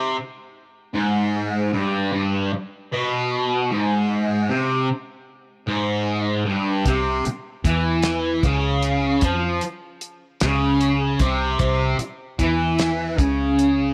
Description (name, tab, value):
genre	psychedelic rock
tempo	51 BPM (dotted quarters)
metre	6/8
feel	straight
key	unclear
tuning	A4 = 440 Hz
part	fuzz guitar	riff	0.0-13.9 s	G2 to F3	-22 LUFS	equal	distortion, phaser
part	fingered electric bass	bass	6.9-13.9 s	C2 to F2	-27 LUFS	equal	none
part	damped 70s drum kit	drums	6.9-13.8 s	hi-hat, kick drum, snare drum	-26 LUFS	equal	none
room	light reverb, studio reverb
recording	none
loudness	-22 LUFS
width	mono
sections	0.0-13.9 A section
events	none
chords	0.0 G; 6.9 C5